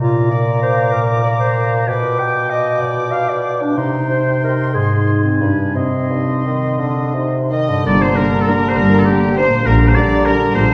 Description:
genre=classical, orchestral ballroom waltz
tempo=162-217 BPM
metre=3/4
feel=rubato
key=C minor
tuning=A4 = 437 Hz
part: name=concert flute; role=second line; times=0.0-10.7 s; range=Bb5 to D6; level=-28 LUFS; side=equal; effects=none
part: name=warm clarinet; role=second line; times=0.0-10.7 s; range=C4 to G5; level=-24 LUFS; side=equal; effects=none
part: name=warm oboe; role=second line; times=0.0-10.7 s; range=G4 to Bb5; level=-24 LUFS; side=equal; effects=none
part: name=warm bassoon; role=accompaniment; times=0.0-10.7 s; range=G2 to Eb3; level=-24 LUFS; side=equal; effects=none
part: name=concert harp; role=arpeggios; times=0.0-10.7 s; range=G2 to F5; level=-22 LUFS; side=equal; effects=none
part: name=muted symphonic violin section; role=melody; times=7.5-10.7 s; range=G4 to Eb5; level=-25 LUFS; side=equal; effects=none
part: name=muted symphonic violin section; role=second line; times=7.5-10.7 s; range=G4 to Eb5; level=-31 LUFS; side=equal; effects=none
part: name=mellow French horn section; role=sustained chords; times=7.9-10.7 s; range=G3 to D4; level=-24 LUFS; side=equal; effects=none
part: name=dark tuba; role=bass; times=7.9-10.7 s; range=G1 to Bb1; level=-24 LUFS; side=equal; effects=none
part: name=muted symphonic cello section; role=bass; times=7.9-10.7 s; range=G2 to Bb2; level=-21 LUFS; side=equal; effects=none
part: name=muted symphonic double bass section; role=bass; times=7.9-10.7 s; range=G1 to Bb1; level=-23 LUFS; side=equal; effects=none
part: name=muted symphonic viola section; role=accompaniment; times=8.2-10.4 s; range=G3 to D4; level=-28 LUFS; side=equal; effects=none
room=wet recital hall reverb, RT60 1.6 s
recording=heard from further back in the room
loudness=-16 LUFS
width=mono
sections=0.0-7.9 A section; 7.9-10.7 B section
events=none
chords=0.0 Bb; 1.9 G7/B; 3.8 Cm; 4.7 Ab; 5.4 G; 5.8 Cm; 7.9 Gm; 9.7 Gm/Bb

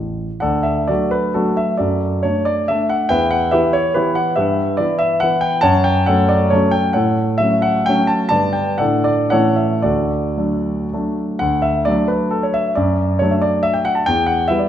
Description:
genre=classical, romantic triple-time dance for piano with dotted rhythms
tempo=106-147 BPM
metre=3/4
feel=rubato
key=D major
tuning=A4 = 441 Hz
part: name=warm concert grand piano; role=solo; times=0.0-14.7 s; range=A1 to A5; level=-15 LUFS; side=equal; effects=none
room=wet recital hall reverb, RT60 1.5 s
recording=none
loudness=-15 LUFS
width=side -10 dB against mid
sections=0.4-11.4 A section; 11.4-14.7 A section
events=none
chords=0.4 D; 1.8 D/F#; 3.1 Em; 4.4 Em/G; 5.6 F#m; 7.0 F#m/A; 8.3 G; 8.8 D/A; 9.3 A; 9.8 D; 12.8 D/F#; 14.1 Em

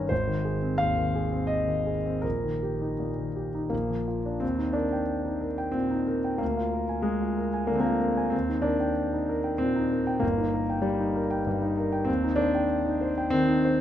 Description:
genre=classical, romantic character piece for solo piano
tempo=78-98 BPM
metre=3/4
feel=rubato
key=Eb major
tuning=A4 = 437 Hz
part: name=warm concert grand piano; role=solo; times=0.0-13.8 s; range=G1 to Bb5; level=-24 LUFS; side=equal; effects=none
room=light reverb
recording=close, detailed microphones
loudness=-25 LUFS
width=side -11 dB against mid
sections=0.0-4.4 A section; 4.4-13.8 B section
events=none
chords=0.1 Ab; 2.2 Eb/Bb; 3.7 Bb; 4.4 Eb; 6.4 Bb7/D; 8.3 Eb; 10.2 Eb/G; 12.1 Cm/Eb

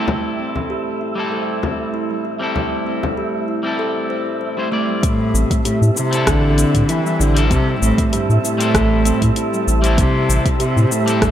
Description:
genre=organic downtempo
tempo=97 BPM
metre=4/4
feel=swing 54% on 16ths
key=A minor pentatonic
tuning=A4 = 439 Hz
part: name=electric guitar at the edge of break-up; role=accompaniment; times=0.0-11.3 s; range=G3 to D5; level=-24 LUFS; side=left 3 dB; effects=sidechain pumping, ping-pong delay
part: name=warm analog pad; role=sustained chords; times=0.0-11.3 s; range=A3 to A5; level=-27 LUFS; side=right 1 dB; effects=chorus, sidechain pumping
part: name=kalimba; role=arpeggios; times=0.0-11.3 s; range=G3 to C5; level=-25 LUFS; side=equal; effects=low-pass filter, ping-pong delay
part: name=wind-like tuned noise texture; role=texture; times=0.0-11.3 s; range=E5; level=-28 LUFS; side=right 5 dB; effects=built-in reverb
part: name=frame drum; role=percussion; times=0.1-3.1 s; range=none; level=-24 LUFS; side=left 3 dB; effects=none
part: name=warm cello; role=melody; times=5.0-11.3 s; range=G2 to E3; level=-18 LUFS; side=equal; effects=digital delay
part: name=deep house drum kit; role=drums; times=5.0-11.3 s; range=cabasa, hi-hat, rim click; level=-22 LUFS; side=left 1 dB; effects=overdrive, low-pass filter on hats, low-pass filter on perc, low-pass filter on snare, low-pass filter on room
part: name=electronic kick drum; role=drums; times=5.0-11.3 s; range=none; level=-20 LUFS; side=equal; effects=overdrive
part: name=warm sub bass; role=bass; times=5.3-11.3 s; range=A1 to A2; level=-16 LUFS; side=equal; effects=none
room=light reverb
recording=none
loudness=-15 LUFS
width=side -10 dB against mid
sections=0.0-5.0 A section; 5.0-11.3 B section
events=none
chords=0.0 Am7

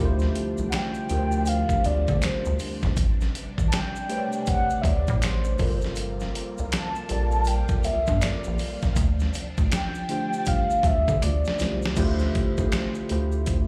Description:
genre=R&B, neo-soul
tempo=80 BPM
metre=4/4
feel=swing 63% on 16ths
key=D minor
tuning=A4 = 440 Hz
part: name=mellow tine electric piano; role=accompaniment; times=0.0-13.7 s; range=D3 to D5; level=-32 LUFS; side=equal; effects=analog chorus, slapback echo
part: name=phased string machine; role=sustained chords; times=0.0-11.9 s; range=B2 to F4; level=-40 LUFS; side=equal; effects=ensemble chorus, phaser
part: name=rubbery square bass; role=bass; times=0.0-13.6 s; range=G1 to D3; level=-27 LUFS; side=equal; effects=none
part: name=dusty soul sampler-style drum kit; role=drums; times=0.2-13.7 s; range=crash cymbal, finger snaps, hi-hat, kick drum, snare drum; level=-29 LUFS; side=equal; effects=none
part: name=maracas and finger snaps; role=percussion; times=0.2-13.7 s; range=none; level=-45 LUFS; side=equal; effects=none
part: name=mellow horn-like synth lead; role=melody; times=0.7-11.8 s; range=C5 to A5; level=-30 LUFS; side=equal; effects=chorus, slapback echo
room=little or no reverb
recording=live gig heard through the venue's PA, club reverb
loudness=-25 LUFS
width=mono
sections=0.0-12.0 A section; 12.0-13.7 B section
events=drum fill 11.2-12.0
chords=0.0 Dm11; 3.0 Am11; 5.6 Gm11; 9.0 Dm11

